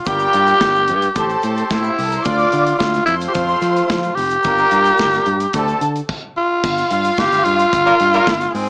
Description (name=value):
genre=disco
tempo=110 BPM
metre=4/4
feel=straight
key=G dorian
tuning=A4 = 440 Hz
part: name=growling tenor saxophone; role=melody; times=0.0-8.7 s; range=C4 to G4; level=-15 LUFS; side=equal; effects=none
part: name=rich studio string section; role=second line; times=0.1-8.7 s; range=E4 to D6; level=-22 LUFS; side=equal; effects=none
part: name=clear horn section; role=stabs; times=0.1-8.3 s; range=D3 to D5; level=-22 LUFS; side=equal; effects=none
part: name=fingered electric bass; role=bass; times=0.1-8.7 s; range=F1 to F3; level=-22 LUFS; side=equal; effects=none
part: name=modern studio drum kit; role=drums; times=0.1-8.7 s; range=crash cymbal, hi-hat, kick drum, snare drum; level=-24 LUFS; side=equal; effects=none
part: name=egg shaker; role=percussion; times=0.1-8.7 s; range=none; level=-46 LUFS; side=right 1 dB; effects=none
room=light reverb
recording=small speaker sound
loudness=-13 LUFS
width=side -32 dB against mid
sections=0.0-6.6 A section; 6.6-8.7 B section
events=none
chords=0.1 Gm7; 1.2 Am7; 2.3 Dm; 3.1 F; 4.5 Gm7; 5.5 D5; 6.6 Gm7